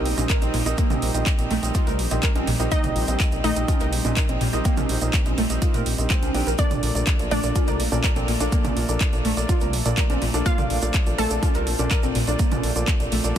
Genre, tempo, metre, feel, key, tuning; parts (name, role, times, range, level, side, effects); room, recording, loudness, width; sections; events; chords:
progressive house; 124 BPM; 4/4; straight; Bb major; A4 = 439 Hz
airy breathy pad; sustained chords; 0.0-13.4 s; G3 to Eb4; -34 LUFS; equal
dark baby grand piano; stabs; 0.0-13.4 s; Bb3 to G5; -29 LUFS; right 2 dB; sidechain pumping, digital delay
dark detuned saw bass; bass; 0.0-13.3 s; Bb1 to Bb2; -26 LUFS; equal; tube saturation, sidechain pumping
house drum kit; drums; 0.1-13.4 s; handclaps, hi-hat; -29 LUFS; right 1 dB
soft round pluck; arpeggios; 0.2-13.4 s; Bb2 to Bb4; -28 LUFS; equal; lush chorus, sidechain pumping, digital delay
electronic congas and toms; percussion; 0.2-12.6 s; -32 LUFS; right 4 dB; sidechain pumping on perc, sidechain pumping on toms
tube shaker; percussion; 0.2-13.3 s; -35 LUFS; right 7 dB
electronic kick drum; drums; 0.3-13.4 s; -22 LUFS; equal
wide unison pluck; melody; 2.7-11.6 s; D4 to A5; -31 LUFS; right 1 dB; digital delay
soft synth bell; second line; 2.7-11.6 s; D5 to A5; -38 LUFS; right 1 dB
digital ambience; dense, heavily limited modern master; -19 LUFS; side -10 dB against mid
0.0-13.4 A section
0.0 Eb6/Bb; 6.6 Bbmaj7